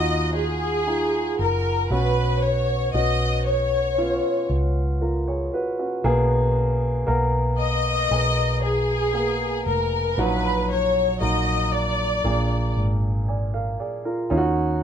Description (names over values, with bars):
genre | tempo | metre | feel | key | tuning
pop ballad | 58 BPM | 4/4 | straight | Eb minor | A4 = 436 Hz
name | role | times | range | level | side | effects
warm studio violin section | melody | 0.0-12.8 s | Ab4 to Eb5 | -23 LUFS | left 2 dB | none
warm grand piano | accompaniment | 0.0-14.8 s | Bb2 to Ab5 | -25 LUFS | right 1 dB | none
vintage muted fingered electric bass | bass | 0.0-14.8 s | F1 to Eb2 | -24 LUFS | equal | none
room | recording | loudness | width
light reverb | band playing live in one room | -20 LUFS | side -8 dB against mid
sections
0.0-14.8 A section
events
none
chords
0.0 Ebmadd9; 1.9 Bsus2; 6.0 Abmadd9/Cb; 10.2 Ebm/Bb; 12.2 Bb7; 14.3 Ebm7